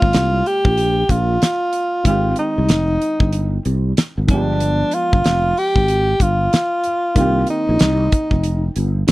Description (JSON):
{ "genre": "R&B, neo-soul", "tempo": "94 BPM", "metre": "4/4", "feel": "swing 62% on 16ths", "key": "unclear", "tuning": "A4 = 440 Hz", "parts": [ { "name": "mellow tenor saxophone", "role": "melody", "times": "0.0-8.7 s", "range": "D4 to G4", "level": "-18 LUFS", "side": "equal", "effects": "slapback echo" }, { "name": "dark baby grand piano", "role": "accompaniment", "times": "0.0-9.1 s", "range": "D3 to C5", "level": "-26 LUFS", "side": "right 1 dB", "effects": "none" }, { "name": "sustaining fretless electric bass", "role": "bass", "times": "0.0-9.1 s", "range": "F1 to C2", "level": "-18 LUFS", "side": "equal", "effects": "ensemble chorus" }, { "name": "damped 70s drum kit", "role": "drums", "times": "0.0-9.1 s", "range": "hi-hat, kick drum, snare drum", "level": "-16 LUFS", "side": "equal", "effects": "none" } ], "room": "light reverb", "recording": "dry, close 1970s-style studio recording", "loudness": "-15 LUFS", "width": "side -19 dB against mid", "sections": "0.0-9.1 A section", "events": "none", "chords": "0.0 Bbm9; 2.1 Abmaj7; 4.3 G7b9; 7.2 Cm7" }